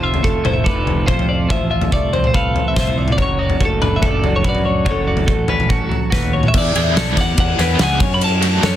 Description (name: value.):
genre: math rock and midwest emo.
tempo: 143 BPM.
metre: 4/4.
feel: straight.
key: unclear.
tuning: A4 = 440 Hz.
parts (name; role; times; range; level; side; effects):
twelve-string electric guitar; melody; 0.0-8.8 s; A4 to B5; -23 LUFS; equal; none.
twelve-string electric guitar; accompaniment; 0.0-6.5 s; C3 to A4; -24 LUFS; right 5 dB; warbly pitch drift.
twelve-string electric guitar; arpeggios; 0.0-8.8 s; A4 to F#5; -24 LUFS; left 5 dB; none.
fuzz fingered electric bass; bass; 0.0-8.8 s; F1 to F#2; -20 LUFS; equal; overdrive.
loose indie drum kit; drums; 0.1-8.7 s; crash cymbal, kick drum, ride cymbal, snare drum, toms; -18 LUFS; equal; soft clipping on snare.
cranked stack guitar; riff; 6.8-8.8 s; E3 to G#4; -22 LUFS; right 2 dB; overdrive, tremolo.
room: light reverb.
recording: dense, heavily limited modern master.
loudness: -14 LUFS.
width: side -12 dB against mid.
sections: 0.0-6.5 A section; 6.5-8.8 B section.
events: none.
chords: 0.0 Fmaj7; 3.2 Dmaj7/F#; 6.5 E9sus4; 8.0 D/F#.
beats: 0.25 0.67 1.09 | 1.51 1.93 2.35 2.77 | 3.19 3.61 4.03 4.45 | 4.87 5.29 5.71 6.13 | 6.54 6.96 7.38 7.80 | 8.21 8.63.